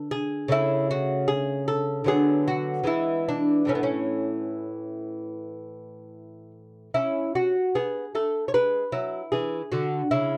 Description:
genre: classical, baroque-style dance for lute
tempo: 76 BPM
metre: 4/4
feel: rubato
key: A major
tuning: A4 = 440 Hz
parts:
  - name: lute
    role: solo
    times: 0.0-10.4 s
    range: A2 to C#5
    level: -26 LUFS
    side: equal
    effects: none
room: little or no reverb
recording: dry, close 1970s-style studio recording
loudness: -26 LUFS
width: mono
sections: 0.0-7.0 A section; 7.0-10.4 B section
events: none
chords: 0.0 E7/D; 0.5 A/C#; 2.1 Bm/D; 2.9 E7; 3.7 A; 7.0 A/C#; 8.5 E

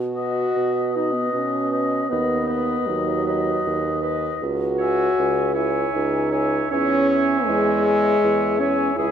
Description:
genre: classical, slow romantic movement for wind quintet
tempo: 78 BPM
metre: 3/4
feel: rubato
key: unclear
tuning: A4 = 441 Hz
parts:
  - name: mellow French horn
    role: accompaniment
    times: 0.0-9.1 s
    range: F#3 to F#4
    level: -22 LUFS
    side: equal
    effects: none
  - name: dark bassoon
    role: bass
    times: 0.0-9.1 s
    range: C#2 to B2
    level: -25 LUFS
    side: right 2 dB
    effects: none
  - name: mellow hollow silver concert flute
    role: melody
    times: 0.2-9.1 s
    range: D#5 to G#5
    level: -30 LUFS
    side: left 6 dB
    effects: none
  - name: mellow oboe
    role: second line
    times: 0.2-9.1 s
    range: D#5 to E5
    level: -27 LUFS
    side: left 2 dB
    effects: none
  - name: warm clarinet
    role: accompaniment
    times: 0.2-9.1 s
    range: G#4 to C#5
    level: -28 LUFS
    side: right 5 dB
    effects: none
room: wet scoring stage reverb, RT60 1.9 s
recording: none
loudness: -19 LUFS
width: side -8 dB against mid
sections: 0.0-9.1 A section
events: none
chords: 0.0 B; 2.1 B/D#; 4.4 C#m; 6.7 C#m/E

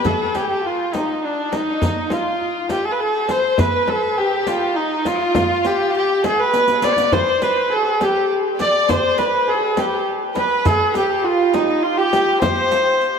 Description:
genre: Persian modal ensemble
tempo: 102 BPM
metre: 3/4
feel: straight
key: C avaz esfahan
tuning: A4 = 440 Hz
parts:
  - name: clear kamancheh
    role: melody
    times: 0.0-13.2 s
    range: D4 to D5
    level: -18 LUFS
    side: equal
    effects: ping-pong delay
  - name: warm studio violin section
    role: second line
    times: 0.0-13.2 s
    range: D4 to D5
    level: -24 LUFS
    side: left 1 dB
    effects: none
  - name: riq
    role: percussion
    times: 0.0-13.1 s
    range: none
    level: -32 LUFS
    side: right 4 dB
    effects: none
  - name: frame drum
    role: percussion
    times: 0.1-12.9 s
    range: none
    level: -27 LUFS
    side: left 4 dB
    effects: none
  - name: tombak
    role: percussion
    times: 0.1-12.9 s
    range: none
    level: -25 LUFS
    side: right 2 dB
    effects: none
  - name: santur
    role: second line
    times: 7.1-13.2 s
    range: Eb4 to D5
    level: -24 LUFS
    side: right 6 dB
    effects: none
room: wet lush hall reverb, RT60 2.1 s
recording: dreamy mix soaked in reverb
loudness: -16 LUFS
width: side -6 dB against mid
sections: 0.1-13.2 A section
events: drum fill 6.5-7.1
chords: none

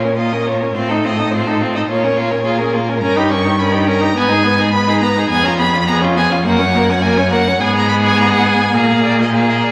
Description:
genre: quick classical-period movement for string quartet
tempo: 105 BPM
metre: 4/4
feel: rubato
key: unclear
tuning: A4 = 438 Hz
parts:
  - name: rich violin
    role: melody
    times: 0.0-9.7 s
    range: Ab4 to Db6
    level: -21 LUFS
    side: equal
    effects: none
  - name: rich violin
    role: second line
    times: 0.0-9.7 s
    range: F4 to Db5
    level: -21 LUFS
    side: equal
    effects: none
  - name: rich viola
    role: accompaniment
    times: 0.0-9.7 s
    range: Bb3 to Eb4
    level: -20 LUFS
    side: equal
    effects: none
  - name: warm cello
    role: bass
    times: 0.0-9.7 s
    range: F2 to Bb2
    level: -21 LUFS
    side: equal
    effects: none
room: wet recital hall reverb, RT60 1.4 s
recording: vinyl crackle, faint mains hum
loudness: -15 LUFS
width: mono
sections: 0.0-9.7 A section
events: none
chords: 0.0 Bbm; 0.8 F7/A; 1.9 Bbm; 3.0 Eb7/G; 4.2 Abm; 5.3 Db7/F; 6.5 Gb; 7.6 Abm; 8.7 Bb7

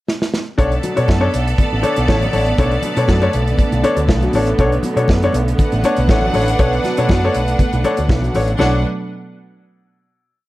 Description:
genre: disco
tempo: 120 BPM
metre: 4/4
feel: straight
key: B minor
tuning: A4 = 440 Hz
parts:
  - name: warm soul drum kit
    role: drums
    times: 0.1-8.7 s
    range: hi-hat, kick drum, snare drum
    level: -18 LUFS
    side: equal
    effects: none
  - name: clear studio string section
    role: second line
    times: 0.6-8.8 s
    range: B3 to F#5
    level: -22 LUFS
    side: right 1 dB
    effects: tape echo
  - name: clear baby grand piano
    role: accompaniment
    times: 0.6-8.8 s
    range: B2 to C#5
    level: -19 LUFS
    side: left 2 dB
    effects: tube saturation
  - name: rich studio string section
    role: sustained chords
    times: 0.6-8.8 s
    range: B2 to D4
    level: -24 LUFS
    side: right 2 dB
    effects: none
  - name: picked electric bass with an envelope filter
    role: bass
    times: 0.6-8.8 s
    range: A1 to B2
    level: -18 LUFS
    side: equal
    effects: none
  - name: congas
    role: percussion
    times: 0.8-8.8 s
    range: none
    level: -26 LUFS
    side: left 2 dB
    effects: none
room: light reverb, small room reverb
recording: none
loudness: -14 LUFS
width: side -17 dB against mid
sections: 0.0-0.6 pickup bar; 0.6-8.6 groove; 8.6-10.5 final chord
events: drum fill 0.1-0.6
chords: 0.0 N.C.; 0.6 Bm7

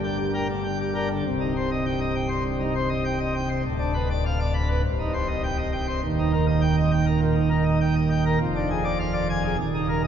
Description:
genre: classical, organ toccata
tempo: 101 BPM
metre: 4/4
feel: straight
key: C minor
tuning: A4 = 440 Hz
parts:
  - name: pipe organ, plenum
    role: solo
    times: 0.0-10.1 s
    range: C1 to B5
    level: -22 LUFS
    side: right 1 dB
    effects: none
room: wet cathedral reverb, RT60 7.1 s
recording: heard from further back in the room, nothing above 7.5 kHz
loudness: -22 LUFS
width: side -8 dB against mid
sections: 0.0-1.3 A section; 1.3-10.1 B section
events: none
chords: 0.0 Gm; 1.3 Cm; 3.7 Bdim/D; 4.8 Cm; 6.0 Eb; 8.4 Ddim/F

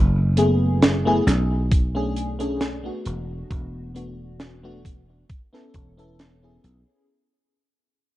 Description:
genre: vaporwave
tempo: 67 BPM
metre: 4/4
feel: straight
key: unclear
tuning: A4 = 440 Hz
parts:
  - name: dry thumbed slap bass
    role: bass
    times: 0.0-6.8 s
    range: E1 to B1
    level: -23 LUFS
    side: equal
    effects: low-pass filter
  - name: FM electric piano with soft pad layer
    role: accompaniment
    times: 0.4-7.1 s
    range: A3 to A4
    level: -25 LUFS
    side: left 1 dB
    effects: analog chorus, cassette tape, tape echo
  - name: crisp fusion drum kit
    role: drums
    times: 0.4-6.8 s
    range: hi-hat, snare drum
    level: -23 LUFS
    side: right 1 dB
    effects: none
  - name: electronic kick drum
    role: drums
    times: 1.7-5.9 s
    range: none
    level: -19 LUFS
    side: equal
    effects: none
room: light reverb, small room ambience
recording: dark, warm production, cassette tape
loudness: -19 LUFS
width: side -16 dB against mid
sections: 0.0-7.1 A section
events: fade-out 0.0-7.1; filter sweep on slap bass 0.0-7.1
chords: 0.0 F#m11; 1.3 Bm7; 3.1 E9sus4; 5.3 Amaj9/E

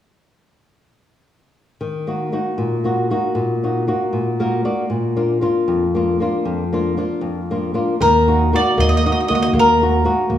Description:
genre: italian folk, Italian serenade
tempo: 78 BPM (dotted quarters)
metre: 6/8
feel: straight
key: Eb harmonic minor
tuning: A4 = 440 Hz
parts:
  - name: flamenco guitar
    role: accompaniment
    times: 1.8-10.4 s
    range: F2 to D5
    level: -18 LUFS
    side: left 1 dB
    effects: none
  - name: bowl-back mandolin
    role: melody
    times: 8.0-10.4 s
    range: Bb4 to Eb5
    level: -16 LUFS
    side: equal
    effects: none
  - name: upright bass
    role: bass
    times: 8.0-10.4 s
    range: Eb2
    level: -18 LUFS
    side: equal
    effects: none
room: wet recital hall reverb, RT60 1.4 s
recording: small room ambience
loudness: -16 LUFS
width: side -11 dB against mid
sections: 1.8-8.0 A section; 8.0-10.4 B section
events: nylon-string guitar fill 4.1-4.9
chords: 1.8 Ebm; 4.9 Bb; 8.0 Ebm

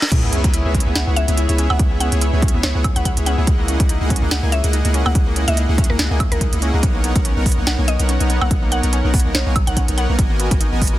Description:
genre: future bass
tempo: 143 BPM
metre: 4/4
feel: swing 55% on 16ths, half-time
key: C# dorian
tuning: A4 = 439 Hz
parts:
  - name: mallet-like synth pluck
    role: melody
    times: 0.0-10.2 s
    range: A#4 to F#5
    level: -28 LUFS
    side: left 1 dB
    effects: chorus, sidechain pumping, digital delay
  - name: trap drum kit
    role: drums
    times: 0.0-11.0 s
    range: crash cymbal, hi-hat, snare drum, woodblock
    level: -23 LUFS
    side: right 1 dB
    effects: none
  - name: reverse cymbal and sub drop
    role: sound effects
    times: 0.0-1.8 s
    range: none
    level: -27 LUFS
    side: equal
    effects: none
  - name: soft supersaw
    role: riff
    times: 0.1-11.0 s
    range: A#3 to G#5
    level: -23 LUFS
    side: right 1 dB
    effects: sidechain pumping, digital delay
  - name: long sustained 808-style bass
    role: bass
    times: 0.1-11.0 s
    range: G#1 to C#2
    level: -19 LUFS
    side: equal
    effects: sidechain pumping
  - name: electronic kick drum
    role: drums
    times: 0.1-10.9 s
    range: none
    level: -18 LUFS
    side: equal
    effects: overdrive
  - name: wide unison pluck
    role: arpeggios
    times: 0.2-11.0 s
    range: A#3 to E4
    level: -30 LUFS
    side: left 3 dB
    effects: sidechain pumping, digital delay
room: digital ambience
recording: dense, heavily limited modern master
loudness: -15 LUFS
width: side -15 dB against mid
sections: 0.1-11.0 A section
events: drop 0.1-11.0; impact 0.1-1.8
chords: 0.1 C#m7; 3.5 F#13/C#; 6.8 Bmaj9; 10.2 G#m9

